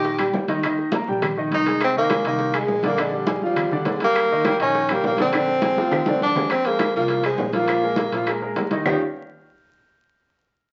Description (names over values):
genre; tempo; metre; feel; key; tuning
Afro-Cuban jazz; 204 BPM; 4/4; straight; Eb major; A4 = 440 Hz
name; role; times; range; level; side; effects
breathy tenor saxophone; melody; 0.0-9.0 s; G3 to G4; -24 LUFS; equal; none
warm concert grand piano; accompaniment; 0.0-9.0 s; D3 to Bb5; -26 LUFS; equal; none
upright bass; bass; 0.0-9.0 s; F1 to Bb2; -37 LUFS; equal; none
bongos; percussion; 0.0-8.9 s; none; -36 LUFS; equal; none
congas; percussion; 0.0-8.9 s; none; -31 LUFS; equal; none
claves; percussion; 0.2-8.9 s; none; -34 LUFS; equal; none
timbales; percussion; 0.2-8.9 s; none; -32 LUFS; equal; none
room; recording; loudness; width
moderate large studio reverb, RT60 0.9 s; very old 78 rpm record, vinyl crackle, nothing above 7.8 kHz; -21 LUFS; mono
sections
0.0-6.5 A section; 6.5-8.9 B section; 8.9-10.0 C section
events
drum fill 1.2-1.8, 5.6-6.5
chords
0.0 Ebadd9; 1.8 Fm7; 3.0 Bb6; 4.2 Eb7; 5.3 Bb9; 6.5 Fm; 7.7 Bb5; 8.9 Eb9